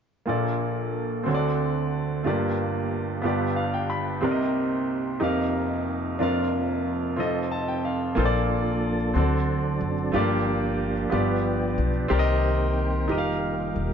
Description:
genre	gospel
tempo	61 BPM (dotted quarters)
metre	6/8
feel	straight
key	Bb major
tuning	A4 = 440 Hz
part	clear grand piano	accompaniment	0.3-13.9 s	F1 to B5	-24 LUFS	right 1 dB	none
part	mellow French horn section	sustained chords	0.3-8.2 s	F3 to Bb4	-35 LUFS	equal	none
part	tonewheel organ	sustained chords	8.2-13.9 s	Eb3 to A4	-28 LUFS	right 2 dB	slow rotary speaker, chorus vibrato
part	upright bass	bass	8.2-13.9 s	E1 to D2	-27 LUFS	left 1 dB	none
room	light reverb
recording	nothing above 7.5 kHz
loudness	-23 LUFS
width	side -7 dB against mid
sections	0.3-8.2 A section; 8.2-13.9 B section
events	grand piano fill 3.2-4.2, 7.2-8.2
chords	0.3 Bbmaj7; 1.3 D7; 2.2 Gm7; 3.2 G7; 4.2 Cm7; 5.2 F9sus4; 6.2 Bb/F; 7.2 F7; 8.2 Bbmaj7; 9.2 D7; 10.1 Gm7; 11.1 G7; 12.1 Cm7; 13.1 F9sus4

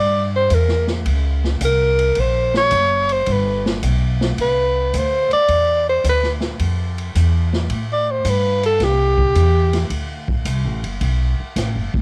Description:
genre	jazz, small-group swing and bop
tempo	109 BPM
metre	4/4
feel	swing 69% on 8ths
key	unclear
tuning	A4 = 444 Hz
part	breathy alto saxophone	melody	0.0-9.9 s	G4 to D5	-19 LUFS	equal	cassette tape, plate reverb
part	upright bass	bass	0.0-12.0 s	D1 to A2	-22 LUFS	equal	transformer saturation
part	swinging big-band drum kit	drums	0.5-12.0 s	hi-hat, kick drum, ride cymbal, snare drum	-28 LUFS	equal	cassette tape
room	light reverb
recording	home recording on cassette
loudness	-18 LUFS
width	mono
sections	0.0-12.0 A section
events	alto saxophone solo 0.0-12.0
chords	0.0 C7 (rootless); 1.1 F#; 3.3 G; 5.5 Dmadd9; 7.7 Am7; 9.9 D7

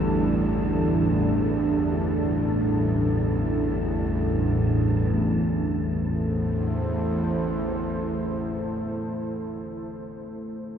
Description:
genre	dark ambient drone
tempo	free time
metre	none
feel	none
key	unclear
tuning	A4 = 442 Hz
part	deep dark ambient pad	sustained chords	0.0-9.1 s	A2 to C5	-26 LUFS	right 1 dB	chorus, built-in reverb
part	quartz singing bowl	arpeggios	0.0-8.6 s	D3 to E4	-33 LUFS	right 1 dB	none
part	bowed-like drone	drone	0.0-8.6 s	A1 to E2	-26 LUFS	equal	built-in reverb
part	wind-like tuned noise texture	texture	0.0-5.2 s	A5	-46 LUFS	right 1 dB	built-in reverb
room	wet huge ambient reverb, RT60 9.1 s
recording	none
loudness	-22 LUFS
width	side -8 dB against mid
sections	0.0-5.1 A section; 5.1-9.9 B section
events	none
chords	0.0 Gsus2/A; 5.1 Am

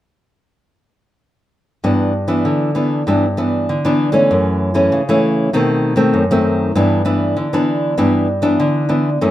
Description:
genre	samba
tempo	98 BPM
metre	4/4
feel	straight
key	G major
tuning	A4 = 440 Hz
part	nylon-string guitar	solo	1.8-9.3 s	F#2 to D4	-13 LUFS	equal	none
room	moderate studio reverb, RT60 0.8 s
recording	minimal, uncompressed stereo recording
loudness	-13 LUFS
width	side -13 dB against mid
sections	1.8-6.8 A section; 6.8-9.3 B section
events	none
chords	1.8 G6; 4.3 F#m7; 5.5 B7b9; 6.8 G6

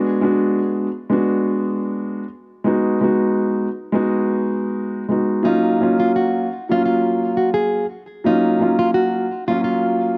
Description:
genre	hip hop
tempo	86 BPM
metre	4/4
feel	swing 55% on 16ths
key	F# major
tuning	A4 = 440 Hz
part	dark grand piano	accompaniment	0.0-10.2 s	F#3 to F#4	-20 LUFS	equal	cassette tape, high-pass filter, low-pass filter
part	nylon-string guitar	melody	5.5-10.2 s	D#4 to G#4	-23 LUFS	equal	high-pass filter, low-pass filter, digital delay
room	light reverb, studio reverb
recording	dark, warm production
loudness	-19 LUFS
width	mono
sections	0.0-10.2 A section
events	none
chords	0.0 Bm6; 2.7 G#m7; 5.5 F#maj7

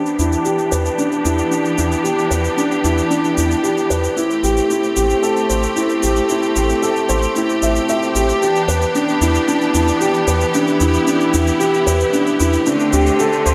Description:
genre	piano and strings electronica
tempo	113 BPM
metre	4/4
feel	straight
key	E minor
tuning	A4 = 440 Hz
part	clear studio string section	sustained chords	0.0-13.5 s	D3 to G4	-23 LUFS	equal	low-pass filter
part	dark upright piano	riff	0.0-13.5 s	D4 to E5	-19 LUFS	equal	digital delay
part	shaker	drums	0.1-13.5 s	none	-30 LUFS	equal	studio reverb
part	round analog bass	bass	0.2-13.5 s	A1 to E2	-22 LUFS	equal	none
room	moderate echo chamber reverb, RT60 1.4 s, small room ambience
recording	none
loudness	-17 LUFS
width	mono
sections	0.0-13.5 A section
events	build-up 0.0-13.5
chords	0.0 Em7; 4.2 Am7; 8.4 Em7; 12.7 D7sus4

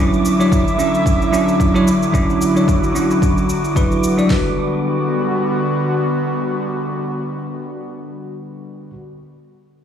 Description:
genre	sunset chillout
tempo	111 BPM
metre	4/4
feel	swing 56% on 16ths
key	G lydian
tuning	A4 = 441 Hz
part	bell-like tine electric piano	accompaniment	0.0-9.0 s	F#3 to D5	-19 LUFS	equal	auto-pan, digital delay
part	airy breathy pad	sustained chords	0.0-8.9 s	D3 to E5	-20 LUFS	equal	chorus
part	wind-like tuned noise texture	texture	0.0-4.3 s	D6	-27 LUFS	right 1 dB	built-in reverb
part	shaker	drums	0.1-4.3 s	none	-32 LUFS	equal	overdrive, studio reverb
part	deep house drum kit	drums	0.5-4.4 s	hi-hat, kick drum, snare drum	-19 LUFS	equal	overdrive, studio reverb
room	moderate lush hall reverb, RT60 2.3 s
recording	played on a big sound system in a bare room, large studio reverb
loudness	-14 LUFS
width	side -8 dB against mid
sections	0.0-4.3 A section; 4.3-8.6 B section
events	none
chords	0.0 Dmaj9; 4.3 Gmaj7

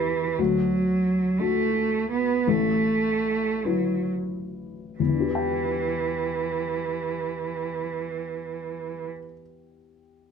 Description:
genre	neoclassical piano and strings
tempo	43-61 BPM (dotted quarters)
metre	6/8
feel	rubato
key	E minor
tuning	A4 = 440 Hz
part	rich cello	second line	0.0-9.0 s	E3 to B3	-25 LUFS	right 4 dB	none
part	dark upright piano	accompaniment	0.0-10.3 s	A1 to G5	-28 LUFS	left 8 dB	none
room	moderate large studio reverb, RT60 0.8 s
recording	dark, warm production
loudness	-23 LUFS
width	side -6 dB against mid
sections	0.0-5.0 A section; 5.0-10.3 B section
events	slowing down 0.0-5.0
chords	0.4 D; 2.5 Asus2; 5.0 Em7

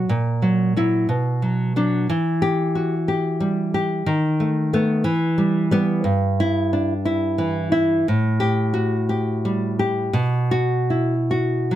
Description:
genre	romantic piece for solo classical guitar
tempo	60 BPM (dotted quarters)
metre	6/8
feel	uneven beats, rubato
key	unclear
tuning	A4 = 440 Hz
part	nylon-string guitar	solo	0.0-11.8 s	G2 to G4	-18 LUFS	equal	none
room	light reverb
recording	none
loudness	-18 LUFS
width	side -12 dB against mid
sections	0.0-11.8 A section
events	none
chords	0.1 F#7/A#; 1.1 Bm; 2.1 Em; 4.1 B7/D#; 5.1 Em; 6.1 Em/G; 8.1 Gsus2/A; 10.1 B5

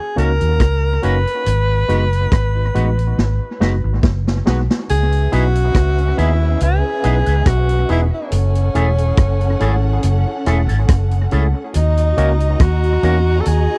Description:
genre	lovers rock reggae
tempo	70 BPM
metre	4/4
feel	swing 55% on 16ths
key	C# minor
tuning	A4 = 440 Hz
part	breathy tenor saxophone	melody	0.0-13.8 s	C#4 to B4	-24 LUFS	equal	tape echo
part	barky tine electric piano	accompaniment	0.2-13.8 s	G#3 to G#4	-27 LUFS	equal	overdrive, tape echo
part	electric guitar with an envelope filter	stabs	0.2-13.1 s	C#4 to B4	-30 LUFS	equal	none
part	vintage muted fingered electric bass	bass	0.2-13.7 s	E1 to E2	-18 LUFS	equal	none
part	vintage drum kit	drums	0.2-13.7 s	hi-hat, kick drum, rim click, snare drum	-20 LUFS	equal	tape echo
part	warm studio string section	second line	4.9-13.8 s	C#4 to A#5	-30 LUFS	equal	none
room	little or no reverb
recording	dry, close 1970s-style studio recording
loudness	-16 LUFS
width	mono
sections	0.0-4.9 A section; 4.9-13.8 B section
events	drum fill 3.2-4.9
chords	0.0 D#m7; 1.5 G#m7; 4.9 C#m7; 8.3 F#m7; 11.7 D#m7

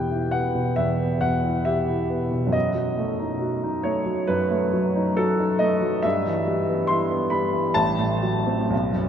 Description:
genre	classical, romantic character piece for solo piano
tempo	62-71 BPM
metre	4/4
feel	rubato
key	E minor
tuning	A4 = 441 Hz
part	clear baby grand piano	solo	0.0-9.1 s	A1 to C6	-21 LUFS	equal	none
room	wet cathedral reverb, RT60 5.9 s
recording	in a vast, echoing space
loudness	-21 LUFS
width	side -8 dB against mid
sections	0.0-9.1 A section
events	none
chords	0.0 Em; 2.5 D#dim/F#; 6.0 Em/G; 7.8 F#dim/A

